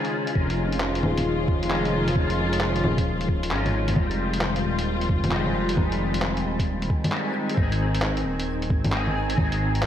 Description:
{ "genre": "future garage", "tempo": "133 BPM", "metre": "4/4", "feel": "swing 65% on 16ths", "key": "F minor", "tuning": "A4 = 440 Hz", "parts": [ { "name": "electric guitar at the edge of break-up", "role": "accompaniment", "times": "0.0-9.9 s", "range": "G3 to Ab4", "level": "-29 LUFS", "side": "left 2 dB", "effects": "ensemble chorus, sidechain pumping, digital delay" }, { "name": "dark studio string section", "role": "sustained chords", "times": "0.0-9.9 s", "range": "Db3 to C5", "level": "-27 LUFS", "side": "left 1 dB", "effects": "sidechain pumping" }, { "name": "lo-fi sampler-style drum kit", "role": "drums", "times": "0.0-9.9 s", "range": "bongos, handclaps, hi-hat", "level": "-29 LUFS", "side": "equal", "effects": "studio reverb, gated reverb" }, { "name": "dark detuned saw bass", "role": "bass", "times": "0.4-9.9 s", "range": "Eb1 to Ab1", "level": "-27 LUFS", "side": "equal", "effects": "tube saturation, sidechain pumping" }, { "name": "electronic kick drum", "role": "drums", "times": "0.4-9.5 s", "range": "none", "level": "-24 LUFS", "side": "equal", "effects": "studio reverb" }, { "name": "backwards swelling texture", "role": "texture", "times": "5.4-9.9 s", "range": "Ab5", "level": "-38 LUFS", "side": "right 4 dB", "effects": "built-in reverb, analog chorus" } ], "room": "moderate lush hall reverb, RT60 2.0 s, digital ambience", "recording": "bright 1980s-style digital production, vinyl crackle", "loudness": "-22 LUFS", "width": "side -10 dB against mid", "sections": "0.0-4.0 A section; 4.0-9.9 A section", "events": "none", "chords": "0.4 Dbadd9; 4.0 Fm7; 7.6 Ab" }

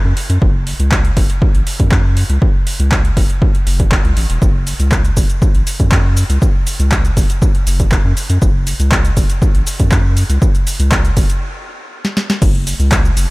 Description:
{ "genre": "acid house", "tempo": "120 BPM", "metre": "4/4", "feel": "straight", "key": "F# minor", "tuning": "A4 = 437 Hz", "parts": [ { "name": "round analog bass", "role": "bass", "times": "0.0-13.3 s", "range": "E1 to F#2", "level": "-15 LUFS", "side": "equal", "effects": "sidechain pumping" }, { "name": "booming analog drum machine", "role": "drums", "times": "0.2-13.3 s", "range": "cabasa, crash cymbal, handclaps, hi-hat, snare drum", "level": "-21 LUFS", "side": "equal", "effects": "none" }, { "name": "electronic kick drum", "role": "drums", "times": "0.4-13.0 s", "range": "none", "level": "-13 LUFS", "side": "equal", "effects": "none" } ], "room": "digital ambience", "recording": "none", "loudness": "-11 LUFS", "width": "side -23 dB against mid", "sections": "0.0-12.4 A section", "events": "stop 11.4-12.4; drum fill 12.0-12.4", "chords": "none" }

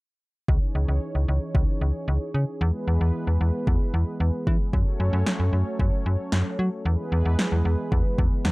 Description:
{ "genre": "synth-pop", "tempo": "113 BPM", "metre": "4/4", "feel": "straight", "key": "C# minor", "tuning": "A4 = 441 Hz", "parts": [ { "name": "brassy analog pad", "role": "sustained chords", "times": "0.5-8.5 s", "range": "E3 to C#5", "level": "-31 LUFS", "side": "right 1 dB", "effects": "chorus" }, { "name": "slap-like FM bass", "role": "bass", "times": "0.5-8.5 s", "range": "C#2 to F#3", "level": "-22 LUFS", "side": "equal", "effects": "none" }, { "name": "deep house drum kit", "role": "drums", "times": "0.5-8.5 s", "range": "kick drum, snare drum", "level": "-23 LUFS", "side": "equal", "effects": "overdrive" } ], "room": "little or no reverb", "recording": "dry, gritty hardware recording, transformer saturation, cassette tape", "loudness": "-22 LUFS", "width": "side -23 dB against mid", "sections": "0.5-8.5 A section", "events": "none", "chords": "0.5 C#madd9; 2.6 E; 4.7 F#m; 6.9 E" }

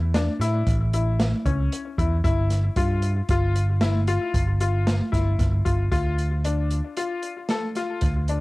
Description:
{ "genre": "progressive instrumental, band music in an uneven meter", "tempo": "114 BPM", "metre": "7/4", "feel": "straight", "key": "D minor", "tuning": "A4 = 440 Hz", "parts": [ { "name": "picked electric bass", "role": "bass", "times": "0.0-8.4 s", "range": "G1 to A2", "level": "-22 LUFS", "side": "equal", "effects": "none" }, { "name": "clear grand piano", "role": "arpeggios", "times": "0.1-8.4 s", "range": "C#4 to A4", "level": "-28 LUFS", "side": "left 4 dB", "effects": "cassette tape, analog delay, plate reverb" }, { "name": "open jazz drum kit", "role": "drums", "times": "0.1-8.4 s", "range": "hi-hat, kick drum, snare drum", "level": "-26 LUFS", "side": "equal", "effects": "cassette tape" } ], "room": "little or no reverb", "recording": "home recording on cassette", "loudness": "-21 LUFS", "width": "side -20 dB against mid", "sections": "0.0-5.9 A section; 5.9-8.4 B section", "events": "none", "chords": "0.0 A; 2.2 Em/G; 5.9 Dm" }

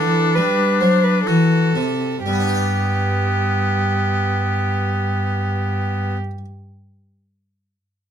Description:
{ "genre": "classical, baroque-style sonata movement with continuo", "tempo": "60 BPM", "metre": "3/4", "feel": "rubato", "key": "G major", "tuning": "A4 = 441 Hz", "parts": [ { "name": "clear oboe", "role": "melody", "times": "0.0-6.2 s", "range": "B3 to F#4", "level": "-23 LUFS", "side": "left 8 dB", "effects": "none" }, { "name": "warm violin", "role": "second line", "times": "0.0-6.2 s", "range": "G4 to C5", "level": "-22 LUFS", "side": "right 5 dB", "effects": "none" }, { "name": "harpsichord", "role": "accompaniment", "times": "0.0-6.5 s", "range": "C3 to D5", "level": "-23 LUFS", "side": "left 2 dB", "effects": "none" }, { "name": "dark cello", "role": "bass", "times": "0.0-6.2 s", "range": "G2 to G3", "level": "-21 LUFS", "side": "equal", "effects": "none" } ], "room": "light reverb", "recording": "none", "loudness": "-16 LUFS", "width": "side -9 dB against mid", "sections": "0.0-2.3 A section; 2.3-8.1 B section", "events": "slowing down 0.0-2.3", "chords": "0.0 D7; 2.3 G" }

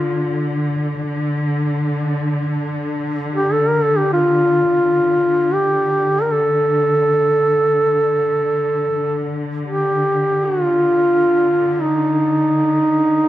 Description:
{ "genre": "caucasian folk, Caucasian lament", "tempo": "free time", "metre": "none", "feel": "none", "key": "D phrygian", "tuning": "A4 = 440 Hz", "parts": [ { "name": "mellow duduk", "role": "melody", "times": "0.0-13.3 s", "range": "Eb4 to Bb4", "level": "-15 LUFS", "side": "equal", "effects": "none" }, { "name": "rich studio cello section", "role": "drone", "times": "0.0-13.3 s", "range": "D3", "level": "-22 LUFS", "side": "left 1 dB", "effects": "none" } ], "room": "moderate concert hall reverb, RT60 2.3 s", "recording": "none", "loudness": "-15 LUFS", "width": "side -14 dB against mid", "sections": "0.0-13.3 A section", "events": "none", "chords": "none" }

